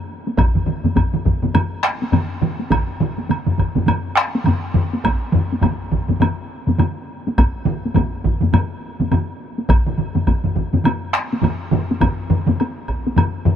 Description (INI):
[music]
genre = japanese traditional, taiko drum ensemble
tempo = 103 BPM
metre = 4/4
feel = swing 60% on 16ths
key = none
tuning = none
[part]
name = taiko ensemble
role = percussion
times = 0.3-13.3 s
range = none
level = -23 LUFS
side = equal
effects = none
[part]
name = taiko ensemble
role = percussion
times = 0.4-13.6 s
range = none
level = -20 LUFS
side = left 3 dB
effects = none
[part]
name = taiko ensemble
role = percussion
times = 0.4-13.6 s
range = none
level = -22 LUFS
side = right 5 dB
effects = none
[part]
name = taiko ensemble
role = percussion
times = 0.4-13.0 s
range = none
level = -20 LUFS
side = equal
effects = none
[part]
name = woodblock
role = percussion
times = 0.4-13.3 s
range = none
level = -29 LUFS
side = right 2 dB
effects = none
[sound]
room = light reverb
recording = none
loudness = -17 LUFS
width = side -9 dB against mid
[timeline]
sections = 0.0-13.6 A section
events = none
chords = none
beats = | 0.38 0.96 1.55 2.13 | 2.71 3.30 3.88 4.46 | 5.04 5.63 6.21 6.79 | 7.37 7.95 8.53 9.11 | 9.69 10.27 10.85 11.43 | 12.01 12.59 13.17